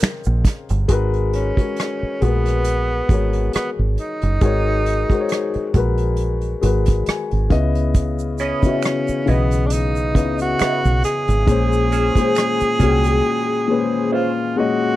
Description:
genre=R&B, neo-soul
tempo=68 BPM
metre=4/4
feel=swing 55% on 16ths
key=G# minor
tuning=A4 = 440 Hz
part: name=dark baby grand piano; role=accompaniment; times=0.0-15.0 s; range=A#2 to G#5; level=-21 LUFS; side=left 5 dB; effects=none
part: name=deep dub fingered electric bass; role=bass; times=0.0-13.2 s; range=F#1 to C#2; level=-19 LUFS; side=right 1 dB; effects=none
part: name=unplugged drum kit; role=drums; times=0.0-13.2 s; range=finger snaps, hi-hat, kick drum, rim click, snare drum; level=-18 LUFS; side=right 1 dB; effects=none
part: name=egg shaker and finger snaps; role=percussion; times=0.2-0.9, 8.0-13.2 s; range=none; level=-35 LUFS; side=right 12 dB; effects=none
part: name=breathy tenor saxophone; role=melody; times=1.3-15.0 s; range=B3 to G#4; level=-22 LUFS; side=right 2 dB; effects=slapback echo
part: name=electric guitar through a small old amp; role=second line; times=8.4-14.3 s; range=C#4 to D#5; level=-25 LUFS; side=right 7 dB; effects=wah, analog chorus
room=little or no reverb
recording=dry, close 1970s-style studio recording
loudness=-16 LUFS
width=side -15 dB against mid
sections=0.9-15.0 A section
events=grand piano fill 6.6-7.9; break 13.2-15.0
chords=0.0 A#m9; 0.9 G#m9; 7.5 C#m9; 11.5 A#m9

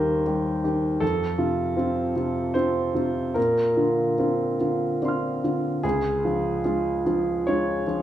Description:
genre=neoclassical minimalist piano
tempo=70-81 BPM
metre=3/4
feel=rubato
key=unclear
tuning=A4 = 438 Hz
part: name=warm grand piano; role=solo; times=0.0-8.0 s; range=Db2 to F6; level=-22 LUFS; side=equal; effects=none
room=wet large studio reverb, RT60 1.4 s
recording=band playing live in one room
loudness=-22 LUFS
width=side -11 dB against mid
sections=0.0-8.0 A section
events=none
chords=0.0 Eb; 1.0 F; 3.4 Bbadd9; 5.8 Db

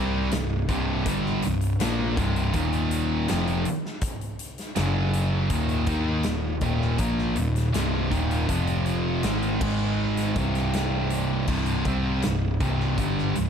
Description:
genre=stoner and doom metal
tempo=81 BPM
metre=4/4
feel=straight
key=C minor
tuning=A4 = 440 Hz
part: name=thick fuzz guitar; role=riff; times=0.0-13.5 s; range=C2 to Eb4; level=-29 LUFS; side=left 8 dB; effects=distortion
part: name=thick fuzz guitar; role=riff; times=0.0-13.5 s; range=C2 to Eb4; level=-28 LUFS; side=right 7 dB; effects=distortion
part: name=tight distorted guitar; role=riff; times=0.0-13.5 s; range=C2 to Eb4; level=-31 LUFS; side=equal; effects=distortion
part: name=hollow-body short-scale picked electric bass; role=bass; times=0.0-13.5 s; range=C1 to Eb2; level=-30 LUFS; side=left 1 dB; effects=overdrive
part: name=big rock drum kit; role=drums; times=0.3-13.5 s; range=crash cymbal, hi-hat, kick drum, snare drum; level=-31 LUFS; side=left 1 dB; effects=none
room=light reverb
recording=none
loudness=-22 LUFS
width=side -7 dB against mid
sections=0.0-13.5 A section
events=none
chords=0.0 C5; 2.5 Eb5; 3.3 F5; 4.8 F#5; 5.5 Eb5; 8.5 F5; 9.2 Ab5; 10.4 C5

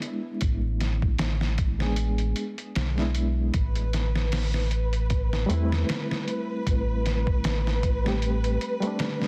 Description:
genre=trip hop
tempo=77 BPM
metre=4/4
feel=swing 56% on 16ths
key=A minor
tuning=A4 = 439 Hz
part: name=reed electric piano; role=accompaniment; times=0.0-9.3 s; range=G3 to G#4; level=-34 LUFS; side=equal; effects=overdrive, fast tremolo, tape echo
part: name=trip hop sampler-style drum kit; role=drums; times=0.0-9.3 s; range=hi-hat, kick drum, snare drum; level=-31 LUFS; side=equal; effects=small room ambience
part: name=round analog bass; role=bass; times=0.4-8.6 s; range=A1 to E2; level=-28 LUFS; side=equal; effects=tube saturation
part: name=warm studio string section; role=sustained chords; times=3.5-9.3 s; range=B4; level=-36 LUFS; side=equal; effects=vintage 12-bit sampler grit
room=digital ambience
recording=dense, heavily limited modern master, vinyl crackle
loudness=-26 LUFS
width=mono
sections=0.0-9.3 A section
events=none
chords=0.0 E7/A; 3.5 Am7

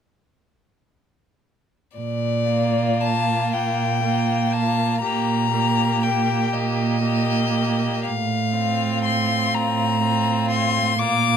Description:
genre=classical, slow romantic movement for string quartet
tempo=40 BPM (dotted quarters)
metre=6/8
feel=uneven beats, rubato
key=Bb major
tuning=A4 = 441 Hz
part: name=rich violin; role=melody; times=2.0-11.4 s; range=D5 to D6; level=-23 LUFS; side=left 7 dB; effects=none
part: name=rich cello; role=bass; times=2.0-11.4 s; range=A2 to Bb2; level=-23 LUFS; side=right 5 dB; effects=none
part: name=rich violin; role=second line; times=2.5-11.4 s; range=F4 to G4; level=-27 LUFS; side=left 3 dB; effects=none
part: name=clear viola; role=accompaniment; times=2.5-11.4 s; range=Bb3 to C4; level=-26 LUFS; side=right 4 dB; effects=none
room=light reverb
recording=close, detailed microphones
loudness=-19 LUFS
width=side -8 dB against mid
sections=2.0-11.4 A section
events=none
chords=2.0 Bb; 8.1 F/A

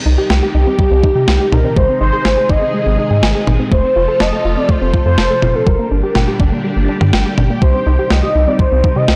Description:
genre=synth-pop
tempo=123 BPM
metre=4/4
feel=straight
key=C minor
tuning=A4 = 439 Hz
part: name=phased string machine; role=sustained chords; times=0.0-9.2 s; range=Bb2 to A4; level=-24 LUFS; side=equal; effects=ensemble chorus, phaser
part: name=soft round pluck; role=arpeggios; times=0.0-9.2 s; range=G3 to A5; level=-24 LUFS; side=equal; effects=chorus, slapback echo
part: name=round analog bass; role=bass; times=0.1-9.2 s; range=F1 to C3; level=-17 LUFS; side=equal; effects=none
part: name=clean 12-bit digital drum machine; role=drums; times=0.3-9.2 s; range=kick drum, snare drum, toms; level=-18 LUFS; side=equal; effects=none
part: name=warm velvety synth lead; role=melody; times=0.5-9.2 s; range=G4 to Eb5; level=-19 LUFS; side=equal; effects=chorus, slapback echo
room=moderate lush hall reverb, RT60 2.0 s, digital ambience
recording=blown-out, overdriven recording, overdrive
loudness=-14 LUFS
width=mono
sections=0.0-9.2 A section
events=none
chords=0.0 Cm; 1.8 Ab; 3.7 F; 5.7 Gm; 7.6 Cm

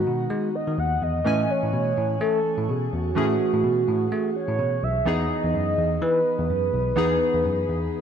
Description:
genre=1980s-style pop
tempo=126 BPM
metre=4/4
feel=swing 55% on 16ths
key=unclear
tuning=A4 = 439 Hz
part: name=mellow horn-like synth lead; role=melody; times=0.0-8.0 s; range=F#4 to F#5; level=-24 LUFS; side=right 1 dB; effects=chorus, phaser, shimmer reverb, digital delay
part: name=warm analog keys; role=accompaniment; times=0.0-8.0 s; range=D#3 to G#5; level=-27 LUFS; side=equal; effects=chorus, shimmer reverb
part: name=bell-like tine electric piano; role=bass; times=0.1-7.9 s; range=B1 to A3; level=-26 LUFS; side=equal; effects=none
room=wet lush hall reverb, RT60 2.2 s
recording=dark, warm production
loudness=-21 LUFS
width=side -8 dB against mid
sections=0.0-8.0 A section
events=none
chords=0.0 G#m7; 1.3 Amaj7; 5.1 Emaj7

